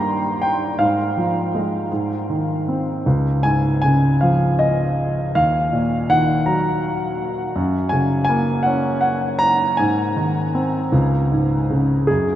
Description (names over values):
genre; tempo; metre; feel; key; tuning
classical, lyrical solo piano; 53 BPM (dotted quarters); 6/8; rubato; Db major; A4 = 441 Hz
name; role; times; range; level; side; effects
warm grand piano; solo; 0.0-12.4 s; Db2 to C6; -17 LUFS; equal; none
room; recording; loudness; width
wet huge ambient reverb, RT60 8.2 s; in a vast, echoing space; -17 LUFS; side -12 dB against mid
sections
0.0-12.1 A section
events
none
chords
0.0 Eb/G; 0.8 Fm/Ab; 1.9 Ab; 3.0 Db; 5.4 Ebm; 7.5 Gb; 9.8 Ab; 10.9 Db5